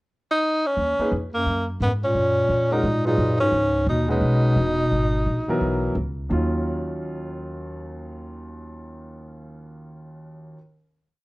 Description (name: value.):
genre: modal jazz.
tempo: 174 BPM.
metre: 4/4.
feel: swing 62% on 8ths.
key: Eb minor.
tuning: A4 = 440 Hz.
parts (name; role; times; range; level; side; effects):
breathy tenor saxophone; melody; 0.3-5.9 s; Bb3 to Eb4; -23 LUFS; equal; none.
upright bass; bass; 0.8-10.5 s; Fb1 to Ab2; -26 LUFS; equal; none.
clear concert grand piano; accompaniment; 1.0-10.6 s; Eb2 to Cb5; -28 LUFS; equal; none.
breathy bass clarinet; second line; 1.3-5.9 s; Gb2 to Cb3; -24 LUFS; equal; none.
room: light reverb.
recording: worn, warbling old tape, cassette tape, warbly pitch drift.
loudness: -20 LUFS.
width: side -21 dB against mid.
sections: 0.0-0.8 pickup bar; 0.8-6.3 A section; 6.3-9.1 final chord.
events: none.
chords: 0.0 N.C.; 0.8 Ebm9; 3.5 Dbm9; 6.3 Ebm9.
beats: 0.08 0.43 | 0.77 1.12 1.46 1.81 | 2.15 2.50 2.84 3.19 | 3.53 3.88 4.22 4.57 | 4.92 5.26 5.61 5.95 | 6.30 6.64 6.99 7.33 | 7.68 8.02 8.37 8.71.